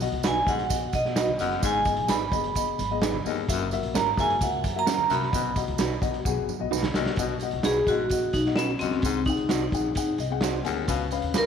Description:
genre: uptempo 1960s-style soul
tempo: 130 BPM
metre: 4/4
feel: straight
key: B major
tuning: A4 = 440 Hz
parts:
  - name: dark upright piano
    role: accompaniment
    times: 0.0-11.5 s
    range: G#2 to G#5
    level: -31 LUFS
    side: left 11 dB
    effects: none
  - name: upright bass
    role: bass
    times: 0.0-11.5 s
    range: F#1 to F#2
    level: -34 LUFS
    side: equal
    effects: none
  - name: raw garage drum kit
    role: drums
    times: 0.0-11.5 s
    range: hi-hat, kick drum, snare drum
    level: -30 LUFS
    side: equal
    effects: none
  - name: congas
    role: percussion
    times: 0.0-7.1 s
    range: none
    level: -40 LUFS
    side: right 10 dB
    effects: none
  - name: tambourine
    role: percussion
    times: 0.0-11.5 s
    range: none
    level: -39 LUFS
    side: right 12 dB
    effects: none
  - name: electric guitar at the edge of break-up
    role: stabs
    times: 0.2-11.5 s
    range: C#4 to B#4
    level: -32 LUFS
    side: right 12 dB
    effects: harmonic tremolo
  - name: vibraphone with hard mallets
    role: melody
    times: 0.3-11.5 s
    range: C4 to B5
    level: -26 LUFS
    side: right 1 dB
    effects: tape echo
  - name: raspy baritone saxophone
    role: riff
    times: 0.5-11.1 s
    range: D#2 to B2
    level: -34 LUFS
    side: left 10 dB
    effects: none
room: light reverb, small room reverb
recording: 1960s-style stereo with parts hard left and right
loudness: -23 LUFS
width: side -7 dB against mid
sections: 0.0-7.2 A section; 7.2-11.5 A section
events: drum fill 6.3-7.2; upright piano fill 10.0-10.9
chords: 0.0 B; 1.6 G#m; 3.5 F#7; 5.3 B; 9.0 G#7; 10.9 C#7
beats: 0.24 0.70 1.17 | 1.63 2.09 2.55 3.02 | 3.48 3.94 4.40 4.87 | 5.33 5.79 6.25 6.72 | 7.18 7.64 8.11 8.57 | 9.03 9.50 9.96 10.42 | 10.89 11.35

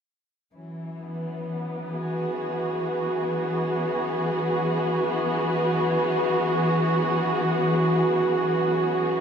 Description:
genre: ambient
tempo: free time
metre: none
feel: none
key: unclear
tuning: A4 = 439 Hz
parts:
  - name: dark chamber string section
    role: sustained chords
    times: 0.5-9.2 s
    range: E3 to G#4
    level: -22 LUFS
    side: equal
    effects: none
  - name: pedal harmonium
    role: drone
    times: 0.5-9.2 s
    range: F#3 to C#4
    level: -40 LUFS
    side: equal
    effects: none
room: wet concert hall reverb, RT60 2.2 s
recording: none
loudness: -22 LUFS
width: side -7 dB against mid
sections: 0.5-9.2 A section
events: none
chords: 0.5 Eadd9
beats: free time

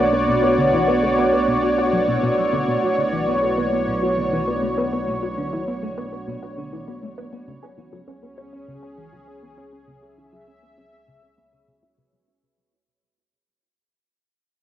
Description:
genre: ambient, sequencer-driven space music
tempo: 100 BPM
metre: 4/4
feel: straight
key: unclear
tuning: A4 = 440 Hz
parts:
  - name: lush unison pad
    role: sustained chords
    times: 0.0-12.3 s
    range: B3 to E5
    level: -20 LUFS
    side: left 1 dB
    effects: chorus, cassette tape, plate reverb
  - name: vibraphone with medium mallets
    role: arpeggios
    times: 0.0-12.3 s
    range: F#3 to B4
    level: -27 LUFS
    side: right 4 dB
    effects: auto-pan, cassette tape, analog delay, plate reverb
  - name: tight sequenced synth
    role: riff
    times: 0.0-12.2 s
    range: B2 to G#4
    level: -26 LUFS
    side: equal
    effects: chorus, phaser, cassette tape, analog delay
  - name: analog drone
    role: bass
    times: 0.0-12.2 s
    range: B1 to C#2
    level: -35 LUFS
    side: left 1 dB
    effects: chorus
room: wet small room reverb, RT60 0.5 s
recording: home recording on cassette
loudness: -18 LUFS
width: side -12 dB against mid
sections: 0.0-12.3 A section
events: fade-out on vibraphone 0.0-12.3; fade-out on synth drone 0.0-12.3; fade-out 0.0-12.3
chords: 0.0 Bm; 7.5 C#m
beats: | 0.28 0.88 1.48 2.08 | 2.68 3.28 3.88 4.48 | 5.08 5.68 6.28 6.88 | 7.48 8.08 8.68 9.28 | 9.88 10.48 11.08 11.68

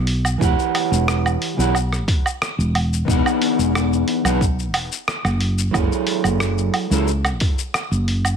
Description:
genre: sunset chillout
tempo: 90 BPM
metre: 4/4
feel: straight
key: unclear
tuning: A4 = 441 Hz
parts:
  - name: woody fretless electric bass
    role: bass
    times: 0.0-8.4 s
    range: E1 to C#2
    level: -20 LUFS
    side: equal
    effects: none
  - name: dusty soul sampler-style drum kit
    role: drums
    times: 0.1-8.4 s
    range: hi-hat, rim click, shaker, woodblock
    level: -24 LUFS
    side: right 1 dB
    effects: none
  - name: electric guitar at the edge of break-up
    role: accompaniment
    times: 0.4-7.1 s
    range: E3 to F#5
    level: -21 LUFS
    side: moving between left 6 dB and right 8 dB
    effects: auto-pan, ping-pong delay
  - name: electronic kick drum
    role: drums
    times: 0.4-7.6 s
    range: none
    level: -20 LUFS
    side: equal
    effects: none
room: light reverb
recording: none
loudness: -17 LUFS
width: side -7 dB against mid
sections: 0.0-8.4 A section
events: none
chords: 0.4 Emadd9; 3.1 Emaj9; 5.4 F#m9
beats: | 0.41 1.08 1.75 2.41 | 3.08 3.75 4.41 5.08 | 5.75 6.41 7.08 7.75

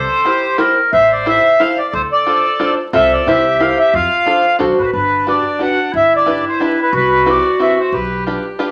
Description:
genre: musette waltz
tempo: 180 BPM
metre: 3/4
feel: swing 54% on 8ths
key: G major from 4.9 s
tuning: A4 = 440 Hz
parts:
  - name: accordion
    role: melody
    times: 0.0-8.2 s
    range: B4 to F#5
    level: -16 LUFS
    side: equal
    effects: none
  - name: clear clarinet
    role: second line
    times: 0.0-8.7 s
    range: D4 to C5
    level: -21 LUFS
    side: equal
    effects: none
  - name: upright bass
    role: bass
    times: 0.0-8.4 s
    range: G1 to F2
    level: -30 LUFS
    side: equal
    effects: none
  - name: open-back banjo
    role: accompaniment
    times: 0.2-8.7 s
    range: C4 to C5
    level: -21 LUFS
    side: equal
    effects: none
room: wet large studio reverb, RT60 1.0 s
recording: vinyl crackle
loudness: -14 LUFS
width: mono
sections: 0.0-4.9 A section; 4.9-8.7 B section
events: none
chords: 0.0 C7; 0.9 Am7; 1.9 Dm7; 2.9 F/C; 3.3 C7; 3.9 F6; 4.6 D7; 4.9 Gmaj7; 5.9 Em7/G; 6.9 Cmaj7; 7.9 G7/B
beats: 0.26 0.60 | 0.93 1.27 1.60 | 1.94 2.27 2.60 | 2.93 3.26 3.60 | 3.93 4.26 4.59 | 4.93 5.27 5.60 | 5.94 6.27 6.60 | 6.93 7.26 7.60 | 7.93 8.26 8.60

